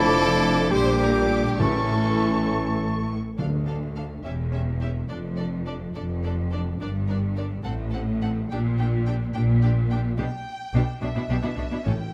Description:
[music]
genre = quick classical-period movement for symphony orchestra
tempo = 70 BPM (dotted quarters)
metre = 6/8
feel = rubato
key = D minor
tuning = A4 = 440 Hz
[part]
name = rich chamber violin section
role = melody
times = 0.0-12.1 s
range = D5 to D6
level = -38 LUFS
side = equal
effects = none
[part]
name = clear clarinet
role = second line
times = 0.0-2.9 s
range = C#4 to G4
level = -30 LUFS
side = equal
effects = none
[part]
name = large flute ensemble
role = second line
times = 0.0-3.1 s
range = C#6 to D6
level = -34 LUFS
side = equal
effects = none
[part]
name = rich chamber violin section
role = second line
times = 0.0-11.9 s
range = D4 to C5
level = -36 LUFS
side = equal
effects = none
[part]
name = warm oboe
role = second line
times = 0.0-3.1 s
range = G5 to A5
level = -33 LUFS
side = equal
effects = none
[part]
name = dark bassoon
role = accompaniment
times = 0.0-3.1 s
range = E3 to G3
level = -31 LUFS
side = equal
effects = none
[part]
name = rich chamber viola section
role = accompaniment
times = 0.0-11.9 s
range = D3 to A4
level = -37 LUFS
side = equal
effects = none
[part]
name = warm French horn section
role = sustained chords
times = 0.0-3.1 s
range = E3 to D4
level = -31 LUFS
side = equal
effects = none
[part]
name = rich chamber double bass section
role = bass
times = 0.0-11.9 s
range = E1 to D2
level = -30 LUFS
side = equal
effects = none
[part]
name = rich symphonic cello section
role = bass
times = 0.0-11.9 s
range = D2 to B2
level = -30 LUFS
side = equal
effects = none
[part]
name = timpani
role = percussion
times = 1.6-4.2, 11.9-12.1 s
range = A2 to D3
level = -32 LUFS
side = equal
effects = none
[sound]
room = moderate scoring stage reverb, RT60 1.8 s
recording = none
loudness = -25 LUFS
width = mono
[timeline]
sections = 0.0-3.4 A section; 3.4-12.1 B section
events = none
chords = 0.0 Dm/F; 0.7 Gm/Bb; 1.6 A; 3.4 Dm; 4.2 C#dim/E; 5.1 Dm/F; 6.8 G5; 7.6 F#dim/A (rootless); 8.5 Gm/Bb; 10.2 G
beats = 0.71 | 1.59 2.49 | 3.38 4.24 | 5.09 5.95 | 6.80 7.65 | 8.50 9.34 | 10.18 11.01 | 11.85

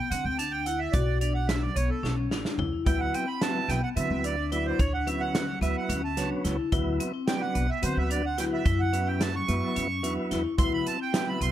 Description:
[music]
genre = progressive instrumental, band music in an uneven meter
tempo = 218 BPM (eighths)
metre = 7/8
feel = straight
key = unclear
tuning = A4 = 440 Hz
[part]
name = accordion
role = melody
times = 0.0-11.5 s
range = A4 to C#6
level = -31 LUFS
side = right 6 dB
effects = digital delay
[part]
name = vibraphone with hard mallets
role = arpeggios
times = 0.0-11.5 s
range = B3 to F#4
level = -32 LUFS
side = left 6 dB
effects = digital delay
[part]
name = upright bass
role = bass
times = 0.1-11.5 s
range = A1 to D3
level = -30 LUFS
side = equal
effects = none
[part]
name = warm soul drum kit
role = drums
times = 0.1-11.5 s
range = hi-hat, kick drum, snare drum, toms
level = -30 LUFS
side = equal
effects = none
[part]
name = tonewheel organ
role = accompaniment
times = 2.9-11.5 s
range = F#3 to F#4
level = -33 LUFS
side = right 2 dB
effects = fast rotary speaker
[sound]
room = small room ambience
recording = none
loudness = -25 LUFS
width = side -12 dB against mid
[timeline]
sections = 0.0-11.5 A section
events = accordion solo 0.0-11.5; drum fill 2.0-2.9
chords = 0.0 C; 0.9 Bm; 2.9 Cmaj7; 4.8 Dmaj7; 6.7 Cmaj7; 8.7 F#5; 10.6 Cmaj7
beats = 0.11 0.39 0.66 | 0.94 1.21 1.49 1.76 2.04 2.31 2.59 | 2.87 3.14 3.42 3.69 3.97 4.24 4.52 | 4.80 5.07 5.35 5.62 5.90 6.17 6.45 | 6.73 7.00 7.28 7.55 7.83 8.11 8.38 | 8.66 8.93 9.21 9.48 9.76 10.03 10.31 | 10.58 10.86 11.13 11.41

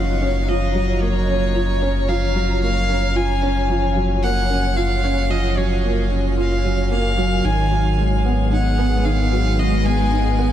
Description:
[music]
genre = piano and strings electronica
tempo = 112 BPM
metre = 4/4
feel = straight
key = F# major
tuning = A4 = 439 Hz
[part]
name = warm violin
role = melody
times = 0.0-10.4 s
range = C#5 to G#5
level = -24 LUFS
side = left 1 dB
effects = tape echo
[part]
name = granular cloud pad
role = sustained chords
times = 0.0-10.5 s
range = G#3 to A#5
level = -29 LUFS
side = left 1 dB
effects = built-in reverb, ensemble chorus
[part]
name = felt-muted upright piano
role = riff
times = 0.0-10.5 s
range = D#3 to E#4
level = -22 LUFS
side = right 1 dB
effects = ensemble chorus, tape echo
[part]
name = warm sub bass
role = bass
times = 0.0-10.5 s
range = F#1 to G#1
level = -20 LUFS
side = equal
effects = none
[sound]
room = moderate huge ambient reverb, RT60 8.1 s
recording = dreamy mix soaked in reverb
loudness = -17 LUFS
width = side -11 dB against mid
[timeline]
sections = 0.0-10.5 A section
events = none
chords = 0.0 F#maj7; 7.4 G#m7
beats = 0.48 | 1.01 1.55 2.09 2.62 | 3.16 3.69 4.23 4.76 | 5.30 5.84 6.37 6.91 | 7.44 7.98 8.52 9.05 | 9.59 10.12

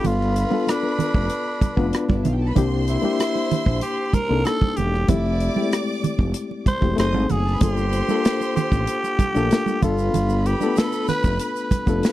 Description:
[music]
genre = lush 1970s-style soul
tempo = 95 BPM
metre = 4/4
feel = straight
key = unclear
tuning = A4 = 439 Hz
[part]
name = growling tenor saxophone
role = melody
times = 0.0-12.1 s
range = D4 to C5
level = -26 LUFS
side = right 1 dB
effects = none
[part]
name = warm studio violin section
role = second line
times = 0.0-12.1 s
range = D4 to D#6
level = -32 LUFS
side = right 1 dB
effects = none
[part]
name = barky reed electric piano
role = accompaniment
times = 0.0-12.1 s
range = G3 to B4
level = -24 LUFS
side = left 4 dB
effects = fast tremolo
[part]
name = growling fingered electric bass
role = bass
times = 0.0-12.0 s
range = E1 to C2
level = -23 LUFS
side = right 1 dB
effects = overdrive
[part]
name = modern studio drum kit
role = drums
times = 0.0-12.1 s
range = hi-hat, kick drum, rim click, snare drum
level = -21 LUFS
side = equal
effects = none
[part]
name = congas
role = percussion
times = 0.0-12.1 s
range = none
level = -27 LUFS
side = right 8 dB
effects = none
[part]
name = tube shaker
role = percussion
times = 7.6-12.1 s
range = none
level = -42 LUFS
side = right 19 dB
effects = none
[sound]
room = little or no reverb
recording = dry, close 1970s-style studio recording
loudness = -19 LUFS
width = side -14 dB against mid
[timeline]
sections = 0.0-12.1 A section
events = none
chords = 0.0 G7; 2.6 C7; 5.1 Fmaj7; 7.0 F#dim7; 7.6 Gm7; 9.8 G7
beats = | 0.04 0.67 1.30 1.94 | 2.57 3.20 3.83 4.46 | 5.09 5.72 6.35 6.98 | 7.62 8.25 8.88 9.51 | 10.14 10.77 11.40 12.03

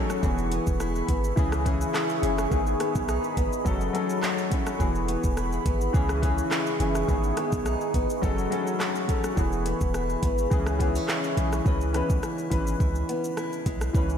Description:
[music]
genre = dancehall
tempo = 105 BPM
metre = 4/4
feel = straight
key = unclear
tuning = A4 = 441 Hz
[part]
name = warm grand piano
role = accompaniment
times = 0.0-14.2 s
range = D#3 to B4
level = -30 LUFS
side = left 3 dB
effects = analog chorus, sidechain pumping
[part]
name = deep dark ambient pad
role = sustained chords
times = 0.0-11.6 s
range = G#4 to E5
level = -31 LUFS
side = right 1 dB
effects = chorus, built-in reverb, sidechain pumping
[part]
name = fingerpicked acoustic archtop guitar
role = arpeggios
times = 0.0-14.2 s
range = F#2 to E4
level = -33 LUFS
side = equal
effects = wide subtle chorus
[part]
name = afro-pop drum kit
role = drums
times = 0.1-14.2 s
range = handclaps, hi-hat, kick drum, rim click, shaker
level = -28 LUFS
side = equal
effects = none
[part]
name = punchy sub bass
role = bass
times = 0.2-14.2 s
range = E1 to C#2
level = -28 LUFS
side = equal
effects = none
[sound]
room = moderate lush hall reverb, RT60 2.1 s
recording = dreamy mix soaked in reverb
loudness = -23 LUFS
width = side -8 dB against mid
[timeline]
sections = 0.0-11.7 A section; 11.7-14.2 B section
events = none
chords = 0.2 E; 1.4 C#m; 2.5 G#m; 3.7 F#m; 4.8 E; 5.9 C#m; 7.1 G#m; 8.2 F#m; 9.4 E; 10.5 C#m; 11.7 C#m7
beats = | 0.23 0.80 1.37 1.94 | 2.52 3.09 3.66 4.23 | 4.80 5.37 5.94 6.51 | 7.09 7.66 8.23 8.80 | 9.37 9.94 10.52 11.09 | 11.66 12.23 12.80 13.37 | 13.94

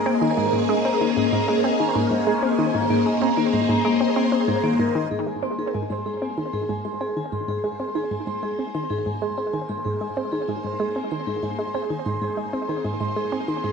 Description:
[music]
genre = ambient, sequencer-driven space music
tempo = 95 BPM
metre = 4/4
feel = straight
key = Ab major from 5.1 s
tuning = A4 = 445 Hz
[part]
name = phased string machine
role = sustained chords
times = 0.0-13.7 s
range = Bb3 to C5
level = -27 LUFS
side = right 1 dB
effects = ensemble chorus, phaser
[part]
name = vibraphone with medium hard mallets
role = arpeggios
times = 0.0-13.7 s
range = Bb3 to C6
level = -25 LUFS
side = moving between left 7 dB and equal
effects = auto-pan, tape echo
[part]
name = analog pluck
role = riff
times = 0.1-13.7 s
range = Ab2 to C4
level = -26 LUFS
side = right 2 dB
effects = chorus, tape echo
[sound]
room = wet plate reverb, RT60 2.7 s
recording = none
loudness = -21 LUFS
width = side -5 dB against mid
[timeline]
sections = 0.0-5.1 A section; 5.1-13.7 B section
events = fade-in on string machine 5.1-13.7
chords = 0.0 Absus2; 5.1 Abadd9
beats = | 0.06 0.69 1.32 1.96 | 2.59 3.22 3.85 4.48 | 5.11 5.75 6.38 7.01 | 7.64 8.27 8.90 9.53 | 10.17 10.80 11.43 12.06 | 12.69 13.32

